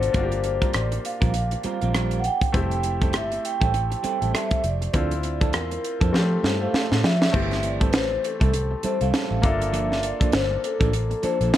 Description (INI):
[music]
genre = lush 1970s-style soul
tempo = 100 BPM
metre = 4/4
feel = swing 58% on 16ths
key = G dorian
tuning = A4 = 441 Hz
[part]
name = vibraphone with soft mallets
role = melody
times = 0.0-11.6 s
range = A4 to G5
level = -27 LUFS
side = equal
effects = none
[part]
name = bright baby grand piano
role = accompaniment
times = 0.0-11.6 s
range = B2 to A4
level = -31 LUFS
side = left 4 dB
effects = none
[part]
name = electric guitar through a small old amp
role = riff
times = 0.0-11.6 s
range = F3 to Bb4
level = -31 LUFS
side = right 3 dB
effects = none
[part]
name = vintage muted fingered electric bass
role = bass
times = 0.0-11.5 s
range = F1 to F3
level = -25 LUFS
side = equal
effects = none
[part]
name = tight funk drum kit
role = drums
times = 0.0-11.6 s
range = crash cymbal, hi-hat, kick drum, rim click, snare drum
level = -24 LUFS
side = equal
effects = none
[sound]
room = small room ambience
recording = dark, warm production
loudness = -20 LUFS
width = side -12 dB against mid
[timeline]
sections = 0.0-7.3 A section; 7.3-11.6 B section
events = drum fill 6.1-7.3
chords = 0.1 C7sus4/G; 2.5 Fmaj9; 4.9 Dm7; 6.1 Fmaj7; 7.3 G13sus4; 9.4 Gm9